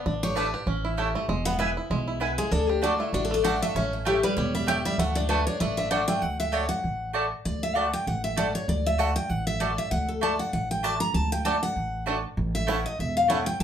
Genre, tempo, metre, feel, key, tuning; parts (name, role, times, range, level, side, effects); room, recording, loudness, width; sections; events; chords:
bluegrass; 195 BPM; 4/4; swing 56% on 8ths; D major; A4 = 441 Hz
bluegrass banjo; melody; 0.0-6.2, 11.5-13.4 s; G3 to G4; -30 LUFS; right 1 dB
upright bass; bass; 0.1-13.6 s; E1 to D2; -30 LUFS; right 1 dB
picked steel-string acoustic guitar; accompaniment; 0.2-13.6 s; E4 to Bb5; -27 LUFS; left 2 dB
mandolin; stabs; 0.4-13.4 s; A3 to A5; -28 LUFS; right 2 dB
wet studio reverb, RT60 0.5 s; heard from further back in the room; -24 LUFS; side -9 dB against mid
0.0-6.2 A section; 6.2-13.6 A section
steel-string acoustic guitar solo 0.0-13.6
0.1 Asus4; 0.7 A; 1.3 E; 2.5 D; 3.8 A7; 5.0 D; 12.4 A